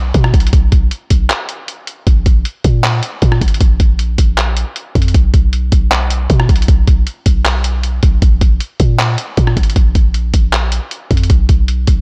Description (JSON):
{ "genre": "hip hop, trap", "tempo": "156 BPM", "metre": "4/4", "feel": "half-time", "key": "unclear", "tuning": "A4 = 438 Hz", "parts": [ { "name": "warm 808-style bass", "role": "bass", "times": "0.0-12.0 s", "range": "Ab1 to Cb3", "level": "-16 LUFS", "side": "equal", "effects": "none" }, { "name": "lo-fi sampler-style drum kit", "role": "drums", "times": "0.1-12.0 s", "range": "handclaps, hi-hat, kick drum, rim click", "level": "-15 LUFS", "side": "equal", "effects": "none" } ], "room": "digital ambience", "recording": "none", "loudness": "-13 LUFS", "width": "mono", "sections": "0.0-2.1 A section; 2.1-12.0 A section", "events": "break 1.3-2.1", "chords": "none", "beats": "0.14 | 0.53 0.91 1.30 1.68 | 2.07 2.45 2.84 3.22 | 3.61 3.99 4.38 4.76 | 5.14 5.53 5.91 6.30 | 6.68 7.07 7.45 7.84 | 8.22 8.61 8.99 9.38 | 9.76 10.14 10.53 10.91 | 11.30 11.68" }